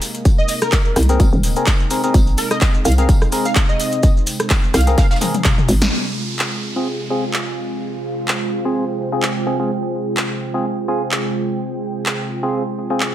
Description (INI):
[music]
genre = bass house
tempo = 127 BPM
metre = 4/4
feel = swing 55% on 16ths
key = F minor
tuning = A4 = 440 Hz
[part]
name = sweeping resonant pad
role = sustained chords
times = 0.0-13.1 s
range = C3 to Ab4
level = -25 LUFS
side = right 1 dB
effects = chorus, sidechain pumping
[part]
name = big-room dance drum kit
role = drums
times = 0.0-13.1 s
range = handclaps, hi-hat, rim click, snare drum, toms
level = -21 LUFS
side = equal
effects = none
[part]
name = vintage brush drum kit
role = drums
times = 0.0-5.8 s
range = hi-hat, snare drum, tambourine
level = -33 LUFS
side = equal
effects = none
[part]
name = maracas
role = percussion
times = 0.0-5.9 s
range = none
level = -30 LUFS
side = right 2 dB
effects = none
[part]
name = electronic kick drum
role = drums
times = 0.3-5.6 s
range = none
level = -14 LUFS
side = equal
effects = none
[part]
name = plucky unison lead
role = melody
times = 0.4-5.2 s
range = Bb4 to F5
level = -24 LUFS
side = right 1 dB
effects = analog chorus, digital delay
[part]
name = hollow knocking FM bass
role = bass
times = 1.0-5.9 s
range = Eb1 to C2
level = -15 LUFS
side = equal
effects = sidechain pumping
[part]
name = percussive organ stab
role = stabs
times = 1.1-13.0 s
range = C4 to Bb4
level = -22 LUFS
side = equal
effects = chorus, sidechain pumping, digital delay
[part]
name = downlifter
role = sound effects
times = 5.9-9.7 s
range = none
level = -32 LUFS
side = right 2 dB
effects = none
[part]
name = deep dark ambient pad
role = texture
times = 7.3-13.1 s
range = F4 to G5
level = -27 LUFS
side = right 2 dB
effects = chorus, built-in reverb, sidechain pumping
[sound]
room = light reverb, small room ambience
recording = none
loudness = -15 LUFS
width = side -12 dB against mid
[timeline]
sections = 0.0-5.9 A section; 5.9-13.1 B section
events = drum fill 5.2-5.9; band accent 5.8; filter sweep on synth stab 5.9-13.1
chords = 0.0 Abadd9; 5.9 Fm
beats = | 0.25 0.73 1.20 1.67 | 2.14 2.62 3.09 3.56 | 4.03 4.50 4.98 5.45 | 5.92 6.39 6.87 7.34 | 7.81 8.29 8.76 9.23 | 9.70 10.18 10.65 11.12 | 11.59 12.06 12.54 13.01